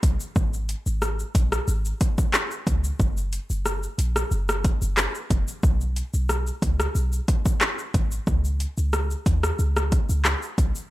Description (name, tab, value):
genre	dancehall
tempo	91 BPM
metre	4/4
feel	straight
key	unclear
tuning	A4 = 445 Hz
part	clean 808-style bass	bass	0.0-10.7 s	E#1 to D#2	-24 LUFS	equal	none
part	deep house drum kit	drums	0.0-10.9 s	handclaps, hi-hat, kick drum, rim click, shaker	-23 LUFS	equal	overdrive
room	little or no reverb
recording	none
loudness	-22 LUFS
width	side -16 dB against mid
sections	0.0-10.9 A section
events	none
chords	none